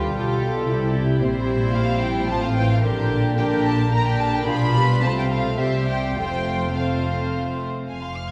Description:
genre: quick classical-period movement for string orchestra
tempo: 104-113 BPM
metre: 3/4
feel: rubato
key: F major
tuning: A4 = 440 Hz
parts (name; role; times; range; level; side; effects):
- rich studio violin section; second line; 0.0-8.3 s; E4 to F5; -30 LUFS; equal; none
- rich studio viola section; accompaniment; 0.0-7.7 s; D3 to F4; -28 LUFS; equal; none
- dark studio cello section; bass; 0.0-8.3 s; F2 to D3; -28 LUFS; equal; none
- warm studio double bass section; bass; 0.0-8.3 s; F1 to D2; -28 LUFS; equal; none
- warm studio violin section; melody; 0.1-8.3 s; A4 to F6; -30 LUFS; equal; none
room: wet scoring stage reverb, RT60 2.0 s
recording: heard from further back in the room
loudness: -22 LUFS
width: mono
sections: 0.0-7.9 A section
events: none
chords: 0.0 G7; 0.7 C; 1.2 C7/Bb; 2.3 F/A; 2.8 Gm/Bb; 4.5 Bdim7; 5.0 F/C; 5.6 C; 6.2 F

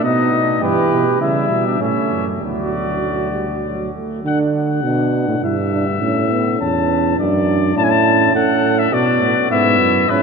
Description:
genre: classical, imitative canzona for brass ensemble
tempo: 102 BPM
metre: 3/4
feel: straight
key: D major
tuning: A4 = 445 Hz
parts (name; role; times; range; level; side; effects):
- mellow trumpet; melody; 0.0-10.2 s; B4 to A5; -19 LUFS; left 9 dB; none
- mellow flugelhorn; second line; 0.0-3.9, 7.8-10.2 s; C#4 to A4; -22 LUFS; right 5 dB; none
- warm euphonium; accompaniment; 0.0-10.2 s; E3 to E4; -20 LUFS; right 2 dB; none
- dark bass trombone; bass; 0.0-10.2 s; D2 to D3; -20 LUFS; right 2 dB; none
room: wet cathedral reverb, RT60 6.0 s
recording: none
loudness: -14 LUFS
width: side -5 dB against mid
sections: 0.0-4.3 A section; 4.3-10.2 B section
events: none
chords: 0.0 B; 0.6 Em/G; 1.8 A; 2.4 D; 5.4 Em/G; 6.0 A; 7.2 D/F#; 7.8 A; 8.9 Bm; 9.5 E

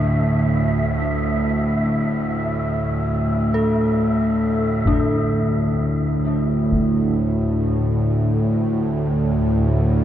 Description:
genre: dark ambient drone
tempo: free time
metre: none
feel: none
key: unclear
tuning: A4 = 440 Hz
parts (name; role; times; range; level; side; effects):
- dark detuned synth bell; arpeggios; 0.0-10.0 s; D4 to A4; -28 LUFS; left 3 dB; chorus, phaser, diffuse ambient delay
- bowed-like drone; drone; 0.0-10.0 s; D2 to A2; -18 LUFS; equal; built-in reverb
- wind-like tuned noise texture; texture; 0.0-4.9 s; E5; -29 LUFS; equal; built-in reverb
- deep dark ambient pad; sustained chords; 8.3-10.0 s; A3 to D5; -34 LUFS; left 2 dB; none
- taiko ensemble; percussion; 4.9-6.9 s; none; -28 LUFS; equal; none
room: wet huge ambient reverb, RT60 8.9 s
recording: dark, warm production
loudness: -17 LUFS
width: side -11 dB against mid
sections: 0.0-4.9 A section; 4.9-10.0 A section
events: none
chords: 0.0 D5

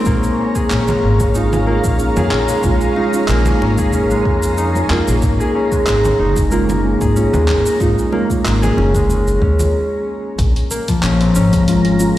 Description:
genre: organic downtempo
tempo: 93 BPM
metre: 4/4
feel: swing 54% on 16ths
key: Bb minor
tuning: A4 = 439 Hz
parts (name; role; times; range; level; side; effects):
- muted felt-like synth keys; accompaniment; 0.0-12.2 s; Ab3 to F4; -22 LUFS; right 3 dB; chorus, sidechain pumping, tape echo
- granular cloud pad; sustained chords; 0.0-12.2 s; Ab4 to Bb5; -23 LUFS; equal; built-in reverb, sidechain pumping
- concert harp; arpeggios; 0.0-12.2 s; F3 to Bb4; -17 LUFS; left 1 dB; tape echo
- upright bass; bass; 0.1-12.1 s; Gb1 to F2; -18 LUFS; equal; tube saturation, sidechain pumping
- deep house drum kit; drums; 0.1-12.1 s; cabasa, handclaps, hi-hat; -27 LUFS; equal; none
- electronic kick drum; drums; 0.1-11.6 s; none; -19 LUFS; equal; none
- congas and bongos; percussion; 0.9-12.1 s; none; -27 LUFS; right 2 dB; none
room: moderate lush hall reverb, RT60 2.9 s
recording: played on a big sound system in a bare room, stone room reverb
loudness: -13 LUFS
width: side -14 dB against mid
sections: 0.0-10.4 A section; 10.4-12.2 B section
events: stop 9.7-10.4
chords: 0.1 Bbm7; 5.2 Ab9sus4; 10.4 Bbm7

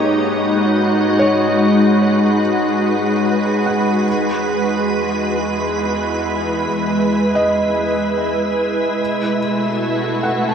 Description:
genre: ambient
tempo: 73 BPM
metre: 3/4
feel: straight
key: unclear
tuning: A4 = 438 Hz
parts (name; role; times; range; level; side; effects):
- soft additive organ-like pad; sustained chords; 0.0-10.5 s; G#3 to C#5; -15 LUFS; equal; ensemble chorus, built-in reverb, shimmer reverb
- felt-muted upright piano; arpeggios; 0.0-10.5 s; C#5 to A5; -24 LUFS; equal; analog delay, shimmer reverb
- rich studio cello section; bass; 0.0-10.5 s; E2 to B2; -32 LUFS; equal; none
room: wet cathedral reverb, RT60 6.7 s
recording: dreamy mix soaked in reverb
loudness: -15 LUFS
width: side -7 dB against mid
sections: 0.0-10.5 A section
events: fade-in on cello section 0.0-10.5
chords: 0.0 G#m7; 4.1 Emaj7; 9.0 B7sus4

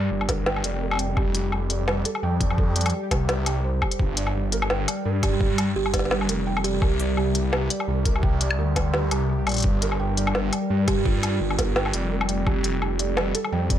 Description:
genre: half-time drum and bass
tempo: 170 BPM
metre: 4/4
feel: swing 56% on 16ths, half-time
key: G minor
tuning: A4 = 439 Hz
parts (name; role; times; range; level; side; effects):
- felt-muted upright piano; arpeggios; 0.0-13.8 s; G3 to G5; -31 LUFS; right 4 dB; vintage 12-bit sampler grit, low-pass filter, tape echo
- phased detuned saw bass; bass; 0.0-13.8 s; F1 to G2; -25 LUFS; equal; phaser
- pulsing gated texture; texture; 0.0-13.8 s; G3 to G4; -32 LUFS; left 3 dB; chorus, built-in reverb
- organic electronic drum kit; drums; 0.2-13.8 s; hi-hat, snare drum, woodblock; -27 LUFS; left 2 dB; studio ambience
- electronic kick drum; drums; 0.3-13.8 s; none; -24 LUFS; equal; overdrive, studio ambience
- buzzing kalimba; melody; 5.2-6.8, 10.9-11.4 s; F4 to G4; -31 LUFS; right 7 dB; vintage 12-bit sampler grit, tape echo
room: light reverb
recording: none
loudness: -21 LUFS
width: side -11 dB against mid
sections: 0.0-13.8 A section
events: none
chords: 0.0 Gm7; 1.2 F; 4.0 Gm7; 6.8 C5; 9.6 Gm7; 12.5 F

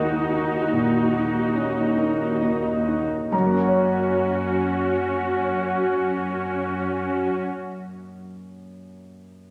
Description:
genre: cinematic, emotional film score for orchestra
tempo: 43-53 BPM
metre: 4/4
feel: rubato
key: F# major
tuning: A4 = 442 Hz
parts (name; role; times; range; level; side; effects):
- muted symphonic viola section; accompaniment; 0.0-7.4 s; C#4 to F#4; -27 LUFS; equal; none
- warm baby grand piano; accompaniment; 0.0-9.5 s; D#2 to A#5; -28 LUFS; equal; none
- concert harp; arpeggios; 0.0-7.7 s; F#2 to F#5; -33 LUFS; equal; none
- muted symphonic cello section; bass; 0.0-7.4 s; D#2 to F#2; -34 LUFS; equal; none
room: wet scoring stage reverb, RT60 1.8 s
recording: none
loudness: -23 LUFS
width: mono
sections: 0.0-3.3 A section; 3.3-8.6 B section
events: slowing down 0.0-3.3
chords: 0.0 D#m; 3.3 F#

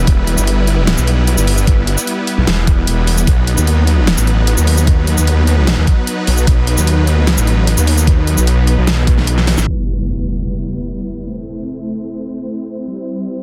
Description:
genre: heavy wobble dubstep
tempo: 150 BPM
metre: 4/4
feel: half-time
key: E harmonic minor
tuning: A4 = 436 Hz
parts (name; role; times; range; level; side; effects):
- supersaw chords; sustained chords; 0.0-13.4 s; F#3 to C5; -22 LUFS; equal; sidechain pumping
- wobble bass; bass; 0.0-9.7 s; E1 to D#2; -15 LUFS; equal; chorus, overdrive
- dubstep drum kit; drums; 0.1-13.4 s; crash cymbal, hi-hat, shaker, snare drum; -21 LUFS; equal; overdrive
- electronic kick drum; drums; 0.1-9.2 s; none; -14 LUFS; equal; overdrive
- impact; sound effects; 9.7-11.3 s; none; -25 LUFS; equal; none
room: little or no reverb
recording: dense, heavily limited modern master, low-pass filter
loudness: -14 LUFS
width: mono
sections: 0.0-9.7 A section; 9.7-13.4 B section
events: drop 0.0-9.7; drum fill 9.4-9.7; band accent 9.6; impact 9.7-11.3; filter sweep 9.7-13.4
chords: 0.0 Em; 3.3 B; 9.7 Em; 11.3 Am; 12.9 C

